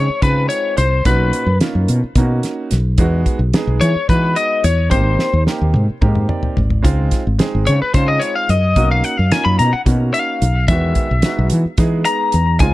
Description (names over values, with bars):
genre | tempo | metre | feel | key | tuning
electric jazz fusion | 218 BPM (eighths) | 7/8 | straight | unclear | A4 = 443 Hz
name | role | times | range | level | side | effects
lightly driven lead guitar | melody | 0.0-12.7 s | Cb5 to Cb6 | -18 LUFS | left 3 dB | none
clear grand piano | accompaniment | 0.0-12.7 s | Bb2 to D5 | -24 LUFS | right 4 dB | none
woody fretless electric bass | bass | 0.0-12.7 s | Ab1 to E3 | -15 LUFS | equal | none
damped 70s drum kit | drums | 0.2-12.7 s | hi-hat, kick drum, snare drum, toms | -18 LUFS | equal | none
room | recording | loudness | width
small room ambience | dark, warm production | -13 LUFS | side -17 dB against mid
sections
0.0-12.7 A section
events
lead electric guitar solo 0.0-12.7; drum fill 5.2-6.8; grand piano fill 6.0-6.8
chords
0.0 Dbmaj9; 1.1 Cbmaj9; 3.0 Emaj9; 4.9 Abmaj9; 6.8 Dbmaj9; 8.8 Cbmaj9; 10.7 Emaj9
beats
0.23 0.51 0.79 | 1.06 1.34 1.61 1.89 2.17 2.44 2.72 | 2.99 3.27 3.54 3.82 4.09 4.37 4.64 | 4.92 5.19 5.47 5.74 6.02 6.29 6.57 | 6.84 7.12 7.39 7.67 7.94 8.22 8.49 | 8.77 9.04 9.31 9.59 9.86 10.14 10.41 | 10.69 10.96 11.24 11.51 11.79 12.06 12.33 | 12.61